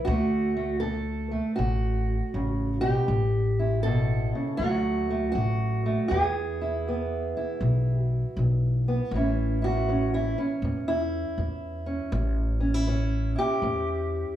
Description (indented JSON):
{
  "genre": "acoustic country blues, solo or duo",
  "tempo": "80 BPM",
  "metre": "4/4",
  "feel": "swing 64% on 8ths",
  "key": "A major",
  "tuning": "A4 = 440 Hz",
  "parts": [
    { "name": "fingerpicked steel-string acoustic guitar", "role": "melody", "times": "0.0-14.4 s", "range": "E2 to A4", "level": "-27 LUFS", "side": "right 1 dB", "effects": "slapback echo" },
    { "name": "upright bass", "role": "bass", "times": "0.1-14.2 s", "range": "A1 to E2", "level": "-27 LUFS", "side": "equal", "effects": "none" }
  ],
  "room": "moderate studio reverb, RT60 0.8 s",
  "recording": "studio ambience",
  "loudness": "-24 LUFS",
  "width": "side -11 dB against mid",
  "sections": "0.0-9.1 A section; 9.1-14.4 B section",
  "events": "steel-string acoustic guitar solo 9.1-14.4",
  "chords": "0.1 D; 3.1 A5; 4.6 D; 6.1 E; 9.1 A",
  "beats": "| 0.07 0.83 1.58 2.34 | 3.09 3.85 4.60 5.35 | 6.11 6.86 7.61 8.36 | 9.12 9.87 10.62 11.37 | 12.12 12.87 13.62"
}